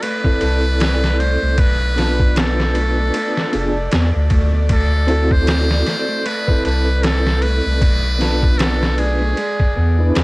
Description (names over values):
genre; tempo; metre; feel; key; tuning
trip hop; 77 BPM; 4/4; swing 57% on 16ths; A harmonic minor; A4 = 442 Hz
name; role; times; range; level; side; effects
trumpet with metal mute; melody; 0.0-10.2 s; G#4 to C5; -22 LUFS; equal; vintage 12-bit sampler grit, cassette tape, tape echo
mellow electric guitar; arpeggios; 0.0-10.2 s; G#3 to A4; -28 LUFS; right 1 dB; vintage 12-bit sampler grit, cassette tape, analog delay
trip hop sampler-style drum kit; drums; 0.0-10.2 s; kick drum, ride cymbal, snare drum; -20 LUFS; equal; none
bowed-like drone; texture; 0.0-10.2 s; D5; -29 LUFS; equal; built-in reverb, cassette tape
mellow reed electric piano; accompaniment; 0.2-10.2 s; B3 to B4; -23 LUFS; equal; fast tremolo, cassette tape, tape echo
soft dub sub bass; bass; 0.4-10.2 s; F1 to E2; -17 LUFS; equal; none
room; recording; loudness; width
light reverb; home recording on cassette; -14 LUFS; side -22 dB against mid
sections
0.0-10.2 A section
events
none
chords
0.0 Amadd9/C; 1.6 Bm7b5; 4.7 D7; 6.3 Amadd9/C; 7.8 Bm7b5; 9.4 E7